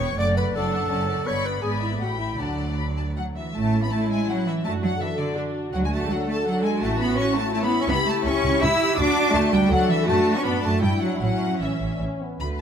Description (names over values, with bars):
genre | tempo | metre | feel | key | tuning
quick classical-period movement for symphony orchestra | 150-169 BPM | 3/4 | rubato | D major, A major from 3.6 s | A4 = 440 Hz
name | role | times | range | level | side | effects
clear chamber violin section | melody | 0.0-12.5 s | D5 to E6 | -31 LUFS | left 5 dB | none
clear symphonic violin section | second line | 0.0-12.6 s | B4 to E6 | -30 LUFS | left 3 dB | none
mellow clarinet | second line | 0.0-3.2 s | D4 to D5 | -28 LUFS | equal | none
rich symphonic viola section | accompaniment | 0.0-12.2 s | F#3 to A4 | -30 LUFS | equal | none
rich chamber double bass section | bass | 0.0-12.6 s | E1 to G2 | -28 LUFS | right 2 dB | none
rich symphonic cello section | bass | 0.0-12.6 s | E2 to E4 | -25 LUFS | right 2 dB | none
warm French horn section | sustained chords | 3.6-12.6 s | A3 to G4 | -28 LUFS | left 4 dB | none
room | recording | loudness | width
moderate scoring stage reverb, RT60 1.7 s | none | -20 LUFS | side -8 dB against mid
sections
0.0-3.6 A section; 3.6-12.4 B section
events
none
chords
0.2 D/F#; 1.3 G; 1.6 G#dim; 2.0 Asus2; 2.4 D; 3.6 A; 4.7 D/F#; 5.7 D; 6.8 A; 7.9 A7; 9.0 D; 10.8 Em7/G; 11.2 A